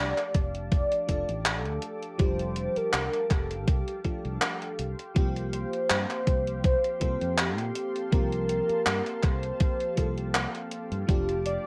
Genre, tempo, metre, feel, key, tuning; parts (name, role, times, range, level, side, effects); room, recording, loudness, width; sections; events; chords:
vaporwave; 81 BPM; 4/4; swing 55% on 16ths; F major; A4 = 437 Hz
warm velvety synth lead; melody; 0.0-11.7 s; G4 to D5; -33 LUFS; equal; chorus, tape echo, plate reverb
FM electric piano with soft pad layer; accompaniment; 0.0-11.7 s; F3 to A4; -38 LUFS; equal; phaser, analog chorus, cassette tape, plate reverb
lush unison pad; sustained chords; 0.0-11.7 s; G4 to D6; -44 LUFS; equal; chorus, vintage 12-bit sampler grit, plate reverb
mellow fretless electric bass; bass; 0.0-11.6 s; F1 to Bb2; -36 LUFS; equal
gated 80s digital drum machine; drums; 0.2-11.6 s; handclaps, hi-hat; -32 LUFS; equal; gated reverb, overdrive
electronic kick drum; drums; 0.3-11.2 s; -28 LUFS; equal; overdrive
moderate small room reverb, RT60 0.5 s; rough home demo mix, cassette tape; -28 LUFS; mono
0.0-11.7 A section
0.0 F69; 4.8 C7sus4; 11.1 F69